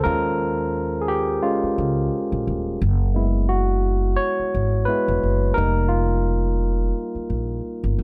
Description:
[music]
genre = R&B, neo-soul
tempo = 87 BPM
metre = 4/4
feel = swing 57% on 16ths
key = unclear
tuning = A4 = 440 Hz
[part]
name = barky tine electric piano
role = accompaniment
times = 0.0-8.0 s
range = G3 to Db5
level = -24 LUFS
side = equal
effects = none
[part]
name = upright bass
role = bass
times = 0.1-8.0 s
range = Eb1 to Eb2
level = -24 LUFS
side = equal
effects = none
[sound]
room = light reverb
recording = dark, warm production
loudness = -22 LUFS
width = mono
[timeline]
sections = 0.0-8.0 A section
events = tine electric piano solo 0.0-8.0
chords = 0.0 Eb9sus4; 2.8 Gb9sus4; 5.6 F9sus4

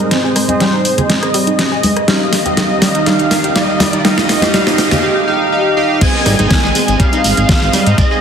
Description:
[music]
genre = progressive house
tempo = 122 BPM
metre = 4/4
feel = straight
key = Ab major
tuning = A4 = 436 Hz
[part]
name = wide unison lead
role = melody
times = 0.0-8.2 s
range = C5 to Ab5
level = -19 LUFS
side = equal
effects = lush chorus, digital delay
[part]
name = lush unison pad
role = sustained chords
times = 0.0-8.2 s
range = Eb3 to F5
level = -24 LUFS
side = equal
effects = chorus, phaser, sidechain pumping
[part]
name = analog pluck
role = arpeggios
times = 0.0-8.2 s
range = G3 to Ab4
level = -19 LUFS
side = equal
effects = chorus, vintage 12-bit sampler grit, sidechain pumping, digital delay
[part]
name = chorused polysynth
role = stabs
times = 0.0-8.2 s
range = C4 to F5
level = -17 LUFS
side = right 1 dB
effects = sidechain pumping, digital delay
[part]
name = pop drum kit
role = drums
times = 0.0-8.1 s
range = crash cymbal, hi-hat, rim click, snare drum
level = -16 LUFS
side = equal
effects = overdrive
[part]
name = riser, noise sweep and downlifter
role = sound effects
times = 1.8-8.2 s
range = none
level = -24 LUFS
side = equal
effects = none
[part]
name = congas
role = percussion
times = 0.5-7.8 s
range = none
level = -23 LUFS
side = right 1 dB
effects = sidechain pumping on perc
[part]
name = electronic kick drum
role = drums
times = 6.0-8.1 s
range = none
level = -13 LUFS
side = equal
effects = overdrive
[part]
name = shekere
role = percussion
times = 6.0-8.2 s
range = none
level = -23 LUFS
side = right 4 dB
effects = none
[part]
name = fat analog bass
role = bass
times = 6.3-7.9 s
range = Ab1 to Ab2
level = -14 LUFS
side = equal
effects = tube saturation, sidechain pumping
[sound]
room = wet recital hall reverb, RT60 1.7 s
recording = heavily compressed radio sound, multiband compression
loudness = -10 LUFS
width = side -7 dB against mid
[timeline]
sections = 0.0-6.0 A section; 6.0-8.2 B section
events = build-up 0.0-6.0; drum fill 0.0-5.0; filter sweep on synth pluck 0.0-6.0; filter sweep on analog polysynth 0.0-6.0; filter sweep on analog synth lead 0.0-6.0; noise sweep 4.0-6.0; drop 6.0-8.2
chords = 0.0 Ab; 2.1 Ebadd9; 6.0 Ab

